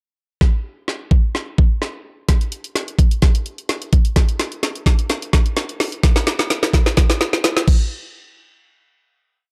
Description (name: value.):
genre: pop.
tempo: 128 BPM.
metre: 4/4.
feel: straight.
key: none.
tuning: none.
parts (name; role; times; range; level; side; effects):
smooth R&B drum kit; drums; 0.4-7.8 s; crash cymbal, hi-hat, kick drum, snare drum; -18 LUFS; equal; none.
room: light reverb.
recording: dark, warm production.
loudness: -18 LUFS.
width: mono.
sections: 0.4-7.9 build; 7.9-9.5 final hit.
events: build-up 0.4-7.9; drum fill 0.4-7.9.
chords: none.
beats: | 0.41 0.88 1.35 1.82 | 2.29 2.75 3.22 3.69 | 4.16 4.63 5.10 5.57 | 6.04 6.50 6.97 7.44.